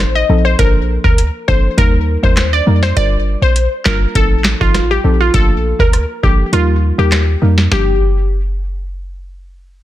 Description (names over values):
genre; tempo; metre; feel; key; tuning
dancehall; 101 BPM; 4/4; straight; G minor; A4 = 440 Hz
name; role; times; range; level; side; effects
clean 808-style bass; bass; 0.0-8.0 s; G1 to F2; -14 LUFS; equal; none
booming analog drum machine; drums; 0.0-7.9 s; handclaps, hi-hat, kick drum, rim click, snare drum; -14 LUFS; equal; none
glassy wavetable pluck; melody; 0.2-8.0 s; F4 to Eb5; -17 LUFS; left 1 dB; chorus, ping-pong delay
soft round pluck; accompaniment; 0.3-7.9 s; F3 to Bb4; -20 LUFS; equal; chorus, sidechain pumping
room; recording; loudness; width
little or no reverb; dense, heavily limited modern master; -11 LUFS; side -14 dB against mid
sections
0.0-7.7 A section; 7.7-9.8 B section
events
kick muted 6.5-7.7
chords
0.0 F7/A; 0.6 Bbmaj7; 1.8 Eb; 3.0 Gm7; 4.2 F7/A; 5.3 Bbmaj7; 6.5 Eb; 7.7 Gm7